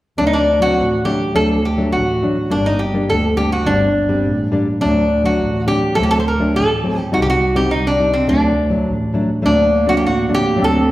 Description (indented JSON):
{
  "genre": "klezmer",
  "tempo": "104 BPM",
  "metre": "2/4",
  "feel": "straight",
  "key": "D phrygian dominant",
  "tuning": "A4 = 440 Hz",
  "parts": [
    { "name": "lap resonator guitar", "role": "melody", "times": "0.2-10.9 s", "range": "C4 to C5", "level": "-17 LUFS", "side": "equal", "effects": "none" },
    { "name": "nylon-string guitar", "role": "accompaniment", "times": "0.2-10.8 s", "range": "F#3 to Eb4", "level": "-20 LUFS", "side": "left 1 dB", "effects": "none" },
    { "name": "warm double bass", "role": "bass", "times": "0.2-10.9 s", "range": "G1 to D2", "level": "-19 LUFS", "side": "right 1 dB", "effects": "none" },
    { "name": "dark clarinet", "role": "second line", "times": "9.4-10.9 s", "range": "Bb3 to C4", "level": "-20 LUFS", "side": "right 4 dB", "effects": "tape echo" }
  ],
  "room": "wet recital hall reverb, RT60 1.4 s",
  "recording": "heard from further back in the room",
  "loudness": "-14 LUFS",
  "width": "side -16 dB against mid",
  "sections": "0.2-9.4 A section; 9.4-10.9 A section",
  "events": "none",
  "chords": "0.2 D; 2.5 Gm; 4.8 D; 7.1 Cm; 8.3 D",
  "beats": "| 0.18 0.76 | 1.34 1.92 | 2.50 3.08 | 3.66 4.24 | 4.82 5.40 | 5.98 6.55 | 7.13 7.71 | 8.29 8.87 | 9.44 10.02 | 10.60"
}